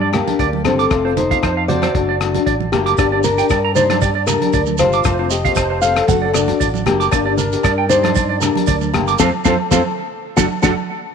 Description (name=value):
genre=highlife guitar band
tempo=116 BPM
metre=4/4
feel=swing 54% on 16ths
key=G minor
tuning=A4 = 440 Hz
part: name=fingerpicked steel-string acoustic guitar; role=melody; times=0.0-10.7 s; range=G3 to F#5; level=-18 LUFS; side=left 3 dB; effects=none
part: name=clean electric guitar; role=arpeggios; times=0.0-10.7 s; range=A4 to D6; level=-21 LUFS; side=right 12 dB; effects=tape echo
part: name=fingered electric bass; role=bass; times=0.0-10.7 s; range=F1 to G2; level=-23 LUFS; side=right 1 dB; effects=none
part: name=nylon-string guitar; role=accompaniment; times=0.1-10.7 s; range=F3 to G4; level=-24 LUFS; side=left 11 dB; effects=none
part: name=cloth-damped thuddy drum kit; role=drums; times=0.1-10.7 s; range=hi-hat, kick drum, rim click, snare drum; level=-22 LUFS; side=left 3 dB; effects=none
part: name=agogo bells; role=percussion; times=0.1-10.7 s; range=none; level=-27 LUFS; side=left 12 dB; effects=none
part: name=congas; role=percussion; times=0.1-10.7 s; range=none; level=-24 LUFS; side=right 15 dB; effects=none
part: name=shekere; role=percussion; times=3.0-10.7 s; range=none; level=-25 LUFS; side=right 10 dB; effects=none
room=light reverb, small room reverb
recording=1960s-style stereo with parts hard left and right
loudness=-14 LUFS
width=side -6 dB against mid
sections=0.0-11.1 A section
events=band accent 9.2-11.1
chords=0.0 Gm; 0.9 F; 2.0 D/F#; 3.0 Gm; 5.1 F; 6.1 D/F#; 7.1 Gm; 9.2 F; 10.2 D/F#